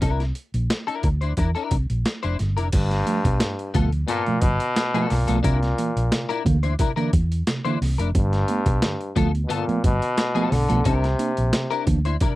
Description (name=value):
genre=funk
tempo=89 BPM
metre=4/4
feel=straight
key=unclear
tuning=A4 = 440 Hz
part: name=clean electric guitar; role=accompaniment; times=0.0-12.3 s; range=B3 to C5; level=-26 LUFS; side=left 7 dB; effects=ensemble chorus
part: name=hollow-body short-scale fingered electric bass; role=bass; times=0.0-12.2 s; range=F1 to E2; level=-22 LUFS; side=equal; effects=none
part: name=boom bap sampler-style drum kit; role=drums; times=0.0-12.4 s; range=crash cymbal, hi-hat, kick drum, snare drum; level=-24 LUFS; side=equal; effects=overdrive
part: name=brilliant trombone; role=melody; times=2.7-11.9 s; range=G2 to D3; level=-25 LUFS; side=left 1 dB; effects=none
part: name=mellow tine electric piano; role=stabs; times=2.7-12.3 s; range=G2 to D4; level=-26 LUFS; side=right 3 dB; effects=none
room=little or no reverb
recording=dry, close 1970s-style studio recording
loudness=-20 LUFS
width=side -17 dB against mid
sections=0.0-2.7 A section; 2.7-12.4 B section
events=none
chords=0.0 C9; 2.7 G9; 5.4 C9; 8.1 G9; 10.9 C9